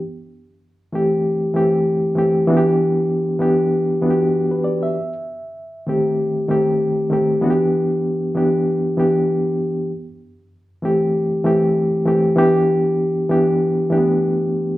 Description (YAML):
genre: soul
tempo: 97 BPM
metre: 4/4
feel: swing 58% on 16ths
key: G major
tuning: A4 = 439 Hz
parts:
  - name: reed electric piano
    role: solo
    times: 0.0-14.8 s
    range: Eb3 to E5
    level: -16 LUFS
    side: equal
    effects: fast tremolo
room: wet large studio reverb, RT60 1.1 s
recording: band playing live in one room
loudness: -16 LUFS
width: side -16 dB against mid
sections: 0.0-14.8 A section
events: none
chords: 0.0 C6; 2.5 G6; 5.0 Cm6; 7.4 G6; 9.9 C6; 12.4 G6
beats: | 0.01 0.63 1.25 1.87 | 2.49 3.11 3.73 4.34 | 4.96 5.58 6.20 6.82 | 7.43 8.05 8.67 9.29 | 9.91 10.52 11.14 11.76 | 12.38 12.99 13.61 14.23